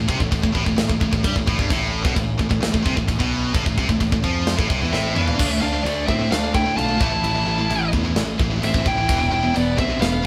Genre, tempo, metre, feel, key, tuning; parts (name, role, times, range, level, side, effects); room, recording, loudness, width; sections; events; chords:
heavy metal; 130 BPM; 4/4; straight; A minor; A4 = 440 Hz
heavy high-gain guitar; riff; 0.0-10.3 s; E2 to D4; -28 LUFS; equal; distortion
heavy high-gain guitar; riff; 0.0-10.2 s; E2 to D4; -28 LUFS; equal; distortion
picked electric bass; bass; 0.0-10.2 s; E1 to A2; -28 LUFS; equal
tight metal drum kit; drums; 0.1-10.1 s; crash cymbal, kick drum, snare drum, toms; -25 LUFS; equal
high-gain lead guitar; melody; 4.9-10.2 s; D5 to A5; -26 LUFS; equal; distortion
high-gain lead guitar; second line; 4.9-10.2 s; A3 to F4; -31 LUFS; equal; distortion, digital delay
light reverb; band playing live in one room; -20 LUFS; mono
0.0-5.4 A section; 5.4-10.3 B section
drum fill 4.9-5.4
0.0 Am; 5.4 D5; 7.0 A5; 9.1 E5